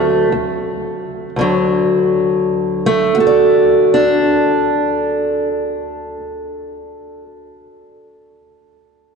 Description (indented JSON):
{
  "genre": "acoustic country blues, solo or duo",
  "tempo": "55 BPM",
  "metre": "4/4",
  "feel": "swing 64% on 8ths",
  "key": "D major",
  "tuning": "A4 = 440 Hz",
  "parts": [
    { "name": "fingerpicked steel-string acoustic guitar", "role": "solo", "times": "0.0-7.2 s", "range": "D2 to D5", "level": "-14 LUFS", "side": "equal", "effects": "none" }
  ],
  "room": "wet cathedral reverb, RT60 4.3 s",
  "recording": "recorded in a church or concert hall, nothing above 10.4 kHz",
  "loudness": "-13 LUFS",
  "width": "side -5 dB against mid",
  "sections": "0.0-1.4 A section; 1.4-5.7 B section",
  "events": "slowing down 0.0-1.4; stop 0.0-0.3",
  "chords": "0.3 N.C.; 1.4 D"
}